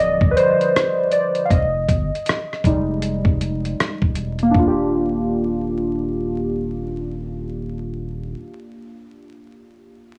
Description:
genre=lo-fi hip hop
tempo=79 BPM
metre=4/4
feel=swing 62% on 16ths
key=Eb major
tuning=A4 = 440 Hz
part: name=warm analog keys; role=accompaniment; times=0.0-10.1 s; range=D3 to F5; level=-22 LUFS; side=equal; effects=chorus, cassette tape, low-pass filter
part: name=saturated sub bass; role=bass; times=0.0-8.3 s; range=D1 to G1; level=-29 LUFS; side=equal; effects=none
part: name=dusty soul sampler-style drum kit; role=drums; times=0.2-4.8 s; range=hi-hat, kick drum, rim click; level=-22 LUFS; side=equal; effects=vintage 12-bit sampler grit
room=moderate studio reverb, RT60 0.6 s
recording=vinyl crackle, small room ambience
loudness=-20 LUFS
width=mono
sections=0.0-4.5 A section; 4.5-7.6 B section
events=synth keys solo 0.0-4.5; filter sweep on synth keys 0.0-4.5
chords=0.0 Ebmaj7; 1.5 Fm7; 4.5 Ebmaj7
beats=0.75 | 1.51 2.27 3.02 3.78 | 4.54 5.30 6.06 6.82

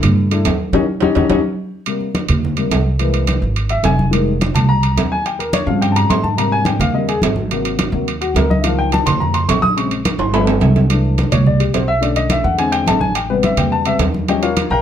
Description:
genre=Afro-Cuban jazz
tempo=213 BPM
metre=4/4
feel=straight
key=Ab major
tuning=A4 = 445 Hz
part: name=warm baby grand piano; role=accompaniment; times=0.0-14.8 s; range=C3 to Eb6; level=-18 LUFS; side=left 4 dB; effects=none
part: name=upright bass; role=bass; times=0.0-14.8 s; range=F1 to Ab2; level=-18 LUFS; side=right 1 dB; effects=none
part: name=congas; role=percussion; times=0.0-14.8 s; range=none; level=-20 LUFS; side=equal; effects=none
part: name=timbales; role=percussion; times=0.0-14.7 s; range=none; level=-22 LUFS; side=right 6 dB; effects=none
room=moderate studio reverb, RT60 0.7 s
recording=dark, warm production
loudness=-14 LUFS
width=side -9 dB against mid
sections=0.0-1.9 A section; 1.9-10.9 A section; 10.9-14.8 A section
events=grand piano solo 0.0-10.9, 10.9-14.8; band accent 0.7-1.9; drum fill 1.2-1.9, 10.2-10.9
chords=0.0 C69 (rootless); 0.7 Eb7; 1.9 Cm7; 3.0 Caug7; 4.1 Fm11; 5.3 Eb13; 6.4 Abmaj7; 7.5 Ab7; 8.6 Db69; 9.8 Bbm7; 10.3 G7; 10.9 C69; 12.0 Bm9; 12.6 Eaug7; 13.2 Am9; 14.3 Eb9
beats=0.17 0.46 | 0.74 1.02 1.30 1.58 | 1.87 2.15 2.43 2.71 | 3.00 3.28 3.56 3.84 | 4.13 4.41 4.69 4.97 | 5.25 5.54 5.82 6.10 | 6.38 6.67 6.95 7.23 | 7.51 7.79 8.08 8.36 | 8.64 8.92 9.20 9.49 | 9.77 10.05 10.33 10.61 | 10.90 11.18 11.46 11.74 | 12.03 12.31 12.59 12.87 | 13.15 13.44 13.72 14.00 | 14.28 14.56

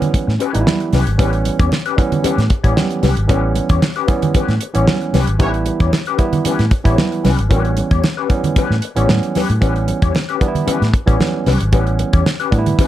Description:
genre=funk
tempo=114 BPM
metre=4/4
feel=straight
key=A mixolydian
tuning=A4 = 438 Hz
part: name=mellow electric guitar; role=accompaniment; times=0.0-12.9 s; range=C#4 to C#5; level=-22 LUFS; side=left 9 dB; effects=wah, spring reverb
part: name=barky tine electric piano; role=stabs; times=0.0-12.9 s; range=E3 to G4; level=-20 LUFS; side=right 4 dB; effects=none
part: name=damped 70s drum kit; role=drums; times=0.0-12.9 s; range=hi-hat, kick drum, snare drum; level=-17 LUFS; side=equal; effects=none
part: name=congas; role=percussion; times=0.0-12.9 s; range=none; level=-22 LUFS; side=right 4 dB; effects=none
part: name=vintage muted fingered electric bass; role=bass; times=0.1-12.8 s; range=G#1 to A2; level=-17 LUFS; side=equal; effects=tube saturation
part: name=warm horn section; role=second line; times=5.4-5.5 s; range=G3 to C#5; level=-24 LUFS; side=right 2 dB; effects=none
room=light reverb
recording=dark, warm production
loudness=-13 LUFS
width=side -13 dB against mid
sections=0.0-12.9 A section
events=tine electric piano fill 2.5-3.3; band accent 5.4-7.5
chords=0.0 A9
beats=0.14 0.67 | 1.19 1.72 2.24 2.77 | 3.30 3.82 4.35 4.88 | 5.40 5.93 6.46 6.98 | 7.51 8.04 8.56 9.09 | 9.62 10.14 10.67 11.20 | 11.73 12.26 12.78

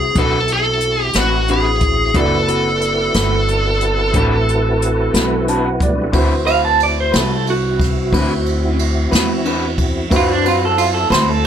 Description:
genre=slow blues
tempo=60 BPM (dotted quarters)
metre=12/8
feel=straight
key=D mixolydian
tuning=A4 = 440 Hz
part: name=smooth overdriven lead guitar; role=melody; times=0.0-5.4 s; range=F#4 to A4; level=-17 LUFS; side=right 1 dB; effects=none
part: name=clear grand piano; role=accompaniment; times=0.0-11.5 s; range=E4 to A5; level=-27 LUFS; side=right 1 dB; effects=none
part: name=tonewheel organ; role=sustained chords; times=0.0-11.5 s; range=G3 to C5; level=-24 LUFS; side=left 1 dB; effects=slow rotary speaker, chorus vibrato
part: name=upright bass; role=bass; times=0.0-11.5 s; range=F#1 to F#2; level=-20 LUFS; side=equal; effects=none
part: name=electric guitar through a small old amp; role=accompaniment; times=0.2-11.3 s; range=D3 to B4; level=-21 LUFS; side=left 2 dB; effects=harmonic tremolo
part: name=jazz brush drum kit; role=drums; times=0.2-11.5 s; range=hi-hat, kick drum, ride cymbal, snare drum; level=-20 LUFS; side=equal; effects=none
part: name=electric guitar through a small old amp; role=second line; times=6.5-11.4 s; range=D4 to A5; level=-17 LUFS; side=right 4 dB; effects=tremolo
room=light reverb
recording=none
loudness=-13 LUFS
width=side -9 dB against mid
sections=0.0-6.1 A section; 6.1-11.5 B section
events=grand piano fill 5.1-6.1; clean electric guitar solo 6.1-11.5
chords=0.0 D13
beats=0.17 1.17 | 2.16 3.15 4.15 5.14 | 6.14 7.13 8.12 9.12 | 10.11 11.11

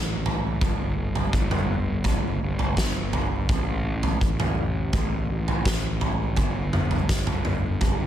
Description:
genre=quiet-loud alternative rock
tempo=83 BPM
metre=4/4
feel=straight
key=unclear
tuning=A4 = 436 Hz
part: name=fuzz picked electric bass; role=bass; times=0.0-8.1 s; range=G1 to A1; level=-27 LUFS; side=equal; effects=overdrive
part: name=huge arena drum kit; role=drums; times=0.3-8.0 s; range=kick drum, snare drum, toms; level=-24 LUFS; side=equal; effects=none
room=little or no reverb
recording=none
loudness=-22 LUFS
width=side -11 dB against mid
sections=0.0-8.1 A section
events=none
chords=none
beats=| 0.61 1.33 2.05 2.77 | 3.49 4.21 4.93 5.66 | 6.38 7.10 7.82

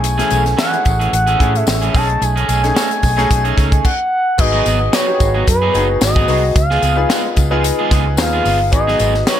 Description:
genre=polished 1980s jazz-funk pop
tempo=111 BPM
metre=4/4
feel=swing 54% on 16ths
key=unclear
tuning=A4 = 440 Hz
part: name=expressive synth lead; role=melody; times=0.0-9.4 s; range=B4 to A5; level=-18 LUFS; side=equal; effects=chorus
part: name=clear grand piano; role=accompaniment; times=0.0-9.4 s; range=A3 to G#4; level=-21 LUFS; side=left 3 dB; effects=analog chorus
part: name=electric guitar at the edge of break-up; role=riff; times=0.0-9.4 s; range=E3 to B4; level=-22 LUFS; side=right 4 dB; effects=wide subtle chorus
part: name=vintage muted fingered electric bass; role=bass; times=0.0-9.2 s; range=F#1 to A2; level=-18 LUFS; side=equal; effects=none
part: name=tight funk drum kit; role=drums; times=0.0-9.4 s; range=crash cymbal, hi-hat, kick drum, snare drum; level=-17 LUFS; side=equal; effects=gated reverb
part: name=tambourine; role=percussion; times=0.0-9.4 s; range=none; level=-31 LUFS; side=left 10 dB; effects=none
room=light reverb, small room ambience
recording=none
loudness=-12 LUFS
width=side -10 dB against mid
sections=0.0-4.4 A section; 4.4-9.4 B section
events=stop 3.8-4.4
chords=0.0 B13sus4; 1.9 B13; 4.4 G#m7; 6.6 C#7; 8.7 G#m7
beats=| 0.04 0.59 1.13 1.67 | 2.22 2.76 3.30 3.84 | 4.39 4.93 5.47 6.01 | 6.56 7.10 7.64 8.19 | 8.73 9.27

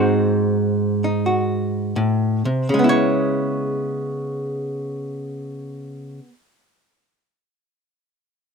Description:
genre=solo jazz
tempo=81-90 BPM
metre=4/4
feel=swing 68% on 8ths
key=C# minor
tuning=A4 = 440 Hz
part: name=archtop guitar, miked and amplified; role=solo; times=0.0-6.3 s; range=G#2 to C#5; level=-19 LUFS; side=equal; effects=none
room=light reverb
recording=dry, close 1970s-style studio recording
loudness=-18 LUFS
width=side -5 dB against mid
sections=0.0-2.7 A section; 2.7-5.7 B section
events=slowing down 0.0-2.7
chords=0.0 G#7; 2.7 C#m7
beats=0.56 1.24 1.95 | 2.68 3.43 4.17 4.91

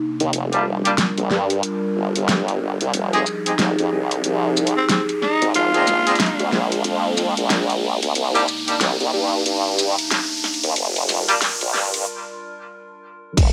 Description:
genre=glitch hop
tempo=92 BPM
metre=4/4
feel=swing 61% on 16ths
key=unclear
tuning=A4 = 441 Hz
part: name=warbly tape-like pad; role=sustained chords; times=0.0-13.5 s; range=C3 to Bb4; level=-28 LUFS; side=equal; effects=chorus, built-in reverb, sidechain pumping
part: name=riser and impact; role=sound effects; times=0.0-13.5 s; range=none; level=-30 LUFS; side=equal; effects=none
part: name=formant-sweep wobble bass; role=bass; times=0.2-13.5 s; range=F1 to G2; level=-24 LUFS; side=equal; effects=chorus, tube saturation, high-pass filter
part: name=pop drum kit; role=drums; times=0.2-13.5 s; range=crash cymbal, hi-hat, shaker, snare drum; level=-24 LUFS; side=equal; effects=none
part: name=brilliant horn section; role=stabs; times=0.5-11.4 s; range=G3 to Ab4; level=-24 LUFS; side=equal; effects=sidechain pumping, low-pass filter, delay
part: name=growling tenor saxophone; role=melody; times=4.8-6.5 s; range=C4 to F4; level=-23 LUFS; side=equal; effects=vintage 12-bit sampler grit, delay
part: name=electronic kick drum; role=drums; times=13.4-13.5 s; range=none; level=-16 LUFS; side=equal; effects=none
room=moderate studio reverb, RT60 0.6 s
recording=high-pass filter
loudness=-20 LUFS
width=mono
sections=0.0-13.4 A section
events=build-up 0.0-13.4; riser 0.0-12.1; filter sweep 0.0-13.4; break 12.1-13.4; impact 13.4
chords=0.3 Gm7; 2.9 Fm9; 5.5 Bb7; 8.2 Cm9; 10.8 Gm7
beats=| 0.33 0.98 1.64 2.29 | 2.94 3.59 4.25 4.90 | 5.55 6.20 6.85 7.51 | 8.16 8.81 9.46 10.12 | 10.77 11.42 12.07 12.72 | 13.38

